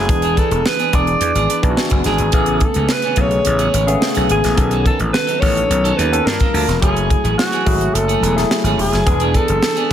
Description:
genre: polished 1980s jazz-funk pop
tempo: 107 BPM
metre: 4/4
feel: straight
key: A major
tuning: A4 = 442 Hz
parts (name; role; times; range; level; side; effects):
- warm alto saxophone; melody; 0.0-9.9 s; F#4 to D5; -19 LUFS; equal; none
- barky tine electric piano; accompaniment; 0.0-9.9 s; C#3 to A5; -21 LUFS; left 1 dB; wide subtle chorus
- gritty slap bass; bass; 0.0-9.9 s; E1 to G2; -19 LUFS; equal; overdrive
- clean electric guitar; riff; 0.1-9.9 s; E3 to B4; -25 LUFS; right 4 dB; wide subtle chorus
- tight funk drum kit; drums; 0.1-9.9 s; hi-hat, kick drum, snare drum; -19 LUFS; equal; gated reverb
room: light reverb, small room ambience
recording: none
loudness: -13 LUFS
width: side -10 dB against mid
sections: 0.0-9.9 A section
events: none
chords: 0.1 E7; 2.3 Amaj9; 4.6 B9; 6.3 Gm9; 6.8 F#m9; 9.1 E7

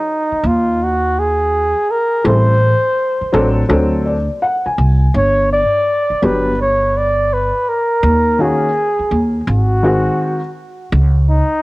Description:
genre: hip hop, jazz-hop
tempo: 83 BPM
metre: 4/4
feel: swing 66% on 16ths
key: unclear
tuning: A4 = 440 Hz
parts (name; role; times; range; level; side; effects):
- breathy flugelhorn; melody; 0.0-11.6 s; Eb4 to D5; -16 LUFS; equal; cassette tape, plate reverb
- upright bass; bass; 0.3-11.4 s; G1 to Eb2; -15 LUFS; equal; none
- dark upright piano; accompaniment; 2.2-10.4 s; Eb3 to Ab5; -17 LUFS; left 1 dB; cassette tape, plate reverb
room: light reverb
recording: home recording on cassette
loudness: -13 LUFS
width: side -21 dB against mid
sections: 0.0-11.6 A section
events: upright piano fill 3.7-5.1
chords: 0.0 Ebsus4; 2.2 Am7; 3.7 D7; 5.1 G; 8.0 Ebm7; 9.5 Ab7; 10.9 N.C.

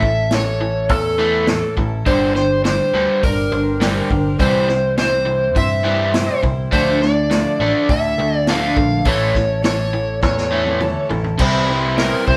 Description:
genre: folk rock and heartland rock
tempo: 103 BPM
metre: 4/4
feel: straight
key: unclear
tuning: A4 = 440 Hz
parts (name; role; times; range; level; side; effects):
- overdriven slide guitar; melody; 0.0-12.4 s; A4 to F5; -22 LUFS; equal; none
- picked twelve-string acoustic guitar; accompaniment; 0.0-12.4 s; A2 to C5; -25 LUFS; equal; none
- overdriven electric guitar; riff; 0.0-12.4 s; G2 to E4; -25 LUFS; equal; none
- picked electric bass; bass; 0.0-12.4 s; G1 to G2; -25 LUFS; equal; none
- vintage drum kit; drums; 0.0-12.4 s; crash cymbal, hi-hat, kick drum, snare drum, toms; -24 LUFS; equal; none
room: moderate studio reverb, RT60 0.5 s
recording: band playing live in one room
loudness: -17 LUFS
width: mono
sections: 0.0-11.4 A section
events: drum fill 10.2-11.4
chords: 0.0 A; 2.1 Gsus4; 4.4 C; 6.7 Dmadd9; 9.1 A; 11.4 C

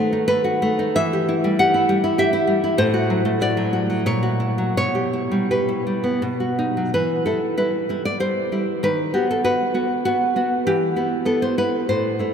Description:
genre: romantic piece for solo classical guitar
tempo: 81-102 BPM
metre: 3/4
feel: rubato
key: E minor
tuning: A4 = 440 Hz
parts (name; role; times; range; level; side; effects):
- nylon-string guitar; solo; 0.0-12.3 s; A2 to F#5; -18 LUFS; equal; none
room: wet cathedral reverb, RT60 7.4 s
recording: in a vast, echoing space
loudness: -18 LUFS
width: side -7 dB against mid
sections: 0.0-6.9 A section; 6.9-12.3 B section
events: none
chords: 0.0 B7/D#; 0.9 Em; 2.8 F#dim/A; 4.1 F#7/A#; 4.8 Em/B; 6.2 B; 6.9 Em; 8.8 B/D#; 10.7 Em

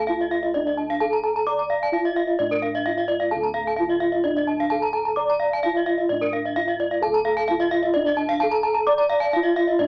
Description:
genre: gamelan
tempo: 130 BPM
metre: 4/4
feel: straight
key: D pelog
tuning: A4 = 440 Hz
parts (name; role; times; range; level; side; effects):
- gamelan-type bronze metallophone; melody; 0.0-9.9 s; D4 to D5; -22 LUFS; equal; cassette tape
- gamelan-type bronze metallophone; arpeggios; 0.0-9.6 s; Bb4-20c to Bb5-20c; -27 LUFS; equal; cassette tape
- gamelan-type bossed gongs; bass; 0.0-9.9 s; D2 to D5; -31 LUFS; equal; transformer saturation
- gamelan-type bronze metallophone; arpeggios; 0.1-9.9 s; D5 to D6; -24 LUFS; equal; cassette tape
room: moderate booth ambience, RT60 0.3 s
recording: home recording on cassette, small speaker sound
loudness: -19 LUFS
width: side -35 dB against mid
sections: 0.0-9.9 A section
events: none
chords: none

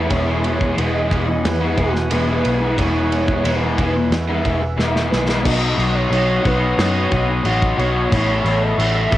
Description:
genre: rock, shoegaze and dream pop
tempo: 90 BPM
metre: 4/4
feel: straight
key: E major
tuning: A4 = 440 Hz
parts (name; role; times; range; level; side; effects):
- warm velvety synth lead; melody; 0.0-9.2 s; F#4 to E5; -25 LUFS; right 2 dB; chorus, analog delay
- chorused pulse-width pad; sustained chords; 0.0-9.2 s; A4 to D#6; -27 LUFS; right 2 dB; cassette tape
- overdriven electric guitar; riff; 0.0-5.5 s; E3 to G#4; -26 LUFS; right 8 dB; reverse reverb, cassette tape
- raw garage guitar; riff; 0.0-9.2 s; E2 to F#4; -20 LUFS; left 4 dB; overdrive, lush chorus, cassette tape
- vintage muted picked electric bass; bass; 0.0-9.2 s; E1 to F#2; -21 LUFS; equal; none
- loose indie drum kit; drums; 0.1-9.2 s; crash cymbal, kick drum, ride cymbal, snare drum; -23 LUFS; equal; cassette tape
room: light reverb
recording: home recording on cassette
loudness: -16 LUFS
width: side -14 dB against mid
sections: 0.0-5.5 A section; 5.5-9.2 B section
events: drum fill 4.8-5.5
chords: 0.1 Eadd9; 5.5 Badd9; 8.1 Asus2

